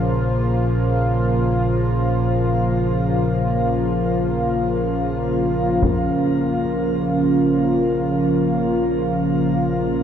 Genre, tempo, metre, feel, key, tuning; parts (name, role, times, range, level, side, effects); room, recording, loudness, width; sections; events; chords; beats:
dark ambient drone; free time; A4 = 442 Hz
sweeping resonant pad; sustained chords; 0.0-10.0 s; Db3 to F4; -19 LUFS; equal; chorus, shimmer reverb
deep rumbling drone; drone; 0.0-10.0 s; Bb1 to Bb2; -24 LUFS; equal; built-in reverb
bronze singing bowl; texture; 0.0-10.0 s; Db4 to F4; -27 LUFS; right 4 dB; shimmer reverb
taiko ensemble; percussion; 5.8-6.1 s; -28 LUFS; equal
wet huge ambient reverb, RT60 8.4 s; -17 LUFS; side -8 dB against mid
0.0-5.8 A section; 5.8-10.0 B section
0.0 Bbm
free time